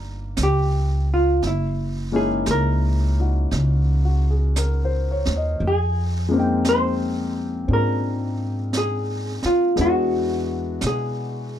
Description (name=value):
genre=jazz ballad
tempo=57 BPM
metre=4/4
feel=swing 68% on 8ths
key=unclear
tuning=A4 = 440 Hz
part: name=hollow-body jazz guitar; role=melody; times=0.0-11.6 s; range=E4 to C5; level=-23 LUFS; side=equal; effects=none
part: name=warm grand piano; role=accompaniment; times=0.0-11.6 s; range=G3 to G5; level=-25 LUFS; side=left 3 dB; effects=none
part: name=upright bass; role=bass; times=0.0-11.6 s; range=F#1 to B2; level=-22 LUFS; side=equal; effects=none
part: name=jazz brush drum kit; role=drums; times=0.4-11.6 s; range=brushed snare drum, hi-hat, snare drum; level=-32 LUFS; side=right 3 dB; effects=none
room=little or no reverb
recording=dark, warm production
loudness=-19 LUFS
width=side -10 dB against mid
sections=0.0-11.6 A section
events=none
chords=0.0 Cm11 (rootless); 1.4 F#13; 5.6 Fm11; 9.8 E9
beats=0.37 | 1.42 2.46 3.51 4.56 | 5.61 6.65 7.69 8.73 | 9.77 10.81